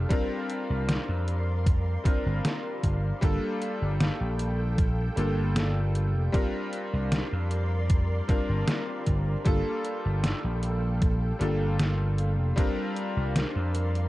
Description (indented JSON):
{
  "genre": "vaporwave",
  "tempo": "77 BPM",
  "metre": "4/4",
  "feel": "straight",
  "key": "unclear",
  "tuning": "A4 = 440 Hz",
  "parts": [
    { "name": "clear electric grand piano", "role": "accompaniment", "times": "0.0-14.1 s", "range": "G3 to Bb4", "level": "-32 LUFS", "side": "left 1 dB", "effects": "lush chorus, tape echo" },
    { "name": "soft string machine", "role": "sustained chords", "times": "0.0-14.1 s", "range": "A4 to C6", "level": "-38 LUFS", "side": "equal", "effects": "ensemble chorus" },
    { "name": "vintage slap bass", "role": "bass", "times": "0.0-14.1 s", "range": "F1 to F2", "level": "-27 LUFS", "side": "equal", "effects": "none" },
    { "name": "detuned 8-bit digital drum machine", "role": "drums", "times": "0.1-14.1 s", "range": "hi-hat, snare drum", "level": "-30 LUFS", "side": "equal", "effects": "vintage 12-bit sampler grit" },
    { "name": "electronic kick drum", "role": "drums", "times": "0.1-12.7 s", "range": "none", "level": "-25 LUFS", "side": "equal", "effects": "vintage 12-bit sampler grit" }
  ],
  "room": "light reverb",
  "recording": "dark, warm production, cassette tape",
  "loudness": "-25 LUFS",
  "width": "side -17 dB against mid",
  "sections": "0.0-14.1 A section",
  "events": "none",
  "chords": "0.1 C9sus4; 3.2 Gm9; 6.3 C9sus4; 9.5 Gm9; 12.6 C9sus4"
}